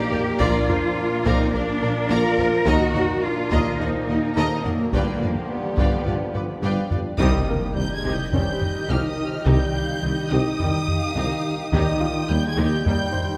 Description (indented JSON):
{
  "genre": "cinematic, hybrid orchestral and electronic film score",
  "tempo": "106 BPM",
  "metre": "4/4",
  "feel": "straight",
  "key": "C phrygian from 7.2 s",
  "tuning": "A4 = 440 Hz",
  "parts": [
    { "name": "warm studio violin section", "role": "melody", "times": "0.0-13.4 s", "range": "G4 to Ab6", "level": "-35 LUFS", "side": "equal", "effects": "none" },
    { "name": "rich symphonic violin section", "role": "second line", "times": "0.0-13.4 s", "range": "Gb4 to Bb5", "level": "-37 LUFS", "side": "equal", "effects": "none" },
    { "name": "rich studio viola section", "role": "accompaniment", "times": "0.0-12.9 s", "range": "G3 to Eb5", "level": "-33 LUFS", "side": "equal", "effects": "none" },
    { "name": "bright trombone section", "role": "sustained chords", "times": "0.0-13.1 s", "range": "Bb2 to Bb3", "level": "-34 LUFS", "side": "equal", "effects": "none" },
    { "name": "dark French horn section", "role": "sustained chords", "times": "0.0-13.4 s", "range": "Eb3 to F4", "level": "-33 LUFS", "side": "equal", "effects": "none" },
    { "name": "shimmering ambient pad", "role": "sustained chords", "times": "0.0-13.4 s", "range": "Eb3 to Eb5", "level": "-33 LUFS", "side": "equal", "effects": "chorus, built-in reverb" },
    { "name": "warm symphonic cello section", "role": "bass", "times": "0.0-12.9 s", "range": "C3 to Bb4", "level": "-29 LUFS", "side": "equal", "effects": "none" },
    { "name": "felt-muted upright piano", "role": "texture", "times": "0.0-13.4 s", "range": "Bb3 to F5", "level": "-36 LUFS", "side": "equal", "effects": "none" },
    { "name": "thumb-piano-like synth pluck", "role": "arpeggios", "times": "0.1-13.0 s", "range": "C3 to Bb4", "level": "-33 LUFS", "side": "equal", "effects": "none" },
    { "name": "clear symphonic double bass section", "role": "bass", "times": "0.1-12.9 s", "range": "Bb1 to G2", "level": "-31 LUFS", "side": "equal", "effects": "none" },
    { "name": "mellow tuba", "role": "bass", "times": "0.1-13.0 s", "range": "G1 to Eb2", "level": "-32 LUFS", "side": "equal", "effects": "none" },
    { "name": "taiko ensemble", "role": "drums", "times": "0.1-13.4 s", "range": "none", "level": "-29 LUFS", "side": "equal", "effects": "none" },
    { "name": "impact", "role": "sound effects", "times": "7.3-9.5 s", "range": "none", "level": "-33 LUFS", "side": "equal", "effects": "none" }
  ],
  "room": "wet scoring stage reverb, RT60 1.5 s",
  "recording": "none",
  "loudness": "-22 LUFS",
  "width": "mono",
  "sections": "0.0-7.2 A section; 7.2-13.4 B section",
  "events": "band accent 7.2-7.8; impact 7.2-9.5",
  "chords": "0.0 Bb; 2.7 Ebm; 4.9 G7; 7.2 Cm; 11.7 Eb"
}